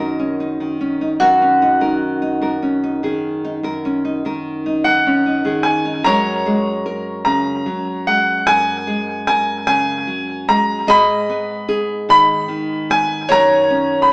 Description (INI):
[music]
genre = acoustic folk duo or small band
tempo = 50 BPM (dotted quarters)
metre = 6/8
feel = straight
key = Eb minor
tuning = A4 = 441 Hz
[part]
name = bright upright piano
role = melody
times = 0.0-0.4, 4.8-14.1 s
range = Eb5 to Cb6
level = -16 LUFS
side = equal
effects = tape echo
[part]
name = mandolin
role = second line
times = 0.0-14.1 s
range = Gb4 to Eb5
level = -18 LUFS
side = equal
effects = none
[part]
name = nylon-string guitar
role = accompaniment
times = 0.0-14.1 s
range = Gb2 to Bb4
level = -20 LUFS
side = equal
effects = none
[sound]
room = wet studio reverb, RT60 0.8 s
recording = heard from further back in the room, small speaker sound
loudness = -14 LUFS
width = side -33 dB against mid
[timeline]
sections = 0.0-1.2 A section; 1.2-6.1 B section; 6.1-14.1 C section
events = none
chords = 0.0 Ebm7/Gb; 6.1 Gbadd9; 10.9 Abm; 13.3 Ebm7/Gb